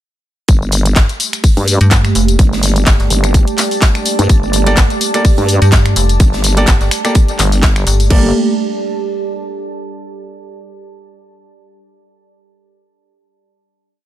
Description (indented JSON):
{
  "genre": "bass house",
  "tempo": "126 BPM",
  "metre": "4/4",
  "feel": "swing 56% on 16ths",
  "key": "G minor",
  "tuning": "A4 = 440 Hz",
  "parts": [
    { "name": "sweeping resonant pad", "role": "sustained chords", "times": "0.5-8.3 s", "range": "A3 to G4", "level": "-21 LUFS", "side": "right 4 dB", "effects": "chorus, sidechain pumping" },
    { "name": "vowel-sweep wobble bass", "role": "bass", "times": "0.5-8.3 s", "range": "G1 to G2", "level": "-13 LUFS", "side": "equal", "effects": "chorus, tube saturation, sidechain pumping" },
    { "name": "garage drum kit", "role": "drums", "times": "0.5-8.2 s", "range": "crash cymbal, kick drum", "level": "-11 LUFS", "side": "equal", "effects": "none" },
    { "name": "garage drum kit", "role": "drums", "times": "0.5-8.1 s", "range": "finger snaps, handclaps, hi-hat, tambourine", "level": "-17 LUFS", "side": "left 2 dB", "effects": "none" },
    { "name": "gated 80s drum kit", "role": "drums", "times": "0.5-8.0 s", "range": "hi-hat, snare drum", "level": "-27 LUFS", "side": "right 4 dB", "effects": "none" },
    { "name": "deep dark ambient pad", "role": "texture", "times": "1.4-10.0 s", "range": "G4 to A5", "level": "-22 LUFS", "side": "right 2 dB", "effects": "chorus, built-in reverb, sidechain pumping" },
    { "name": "metallic FM bass", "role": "bass", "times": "1.0-8.1 s", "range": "F1 to G2", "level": "-12 LUFS", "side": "equal", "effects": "tube saturation, sidechain pumping" },
    { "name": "clear concert grand piano", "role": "stabs", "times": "4.7-8.3 s", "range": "Bb3 to D5", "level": "-19 LUFS", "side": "right 1 dB", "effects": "sidechain pumping, dub echo" }
  ],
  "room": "small room reverb",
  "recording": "none",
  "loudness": "-10 LUFS",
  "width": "side -13 dB against mid",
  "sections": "0.5-8.1 drop; 8.1-10.0 final chord",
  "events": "drop 0.5-8.1",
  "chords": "0.5 Gmadd9"
}